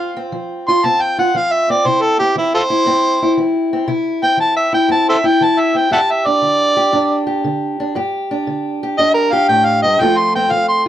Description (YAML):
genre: acoustic country blues, solo or duo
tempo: 118 BPM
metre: 4/4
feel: swing 68% on 8ths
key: C major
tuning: A4 = 440 Hz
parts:
  - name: overdriven harmonica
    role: melody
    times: 0.0-10.8 s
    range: E4 to C6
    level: -14 LUFS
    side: equal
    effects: none
  - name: fingerpicked steel-string acoustic guitar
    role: accompaniment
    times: 0.0-10.9 s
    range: F2 to G4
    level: -17 LUFS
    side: left 1 dB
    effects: none
room: moderate studio reverb, RT60 0.6 s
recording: none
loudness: -13 LUFS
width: side -11 dB against mid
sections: 0.0-10.9 A section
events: harmonica solo 0.0-10.9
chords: 0.0 F5; 1.8 C; 5.9 G5; 10.0 F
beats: 0.32 0.83 1.34 | 1.85 2.36 2.87 3.38 | 3.88 4.39 4.90 5.41 | 5.92 6.43 6.93 7.44 | 7.95 8.46 8.97 9.48 | 9.98 10.49